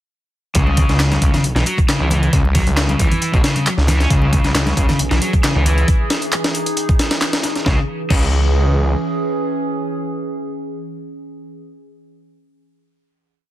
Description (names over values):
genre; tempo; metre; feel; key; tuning
breakbeat, breaks; 135 BPM; 4/4; swing 53% on 16ths; C# minor; A4 = 440 Hz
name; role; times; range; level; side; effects
punchy analog drum machine; drums; 0.5-7.6 s; handclaps, hi-hat; -25 LUFS; equal; overdrive
crunchy overdriven guitar; riff; 0.6-8.2 s; B2 to C#4; -20 LUFS; left 1 dB; tube saturation, tape echo
detuned saw bass; bass; 0.6-9.0 s; B1 to C#2; -17 LUFS; equal; none
breakbeat sampler-style drum kit; drums; 0.6-8.2 s; crash cymbal, hi-hat, kick drum, snare drum; -18 LUFS; equal; none
congas; percussion; 0.7-5.8 s; none; -26 LUFS; equal; none
warbly tape-like pad; sustained chords; 4.7-11.5 s; E3 to G#4; -24 LUFS; right 1 dB; chorus, built-in reverb, sidechain pumping
room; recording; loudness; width
light reverb; dense, heavily limited modern master; -14 LUFS; side -13 dB against mid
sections
0.5-7.7 drop; 7.7-11.2 final chord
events
drop 0.5-7.7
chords
0.5 C#m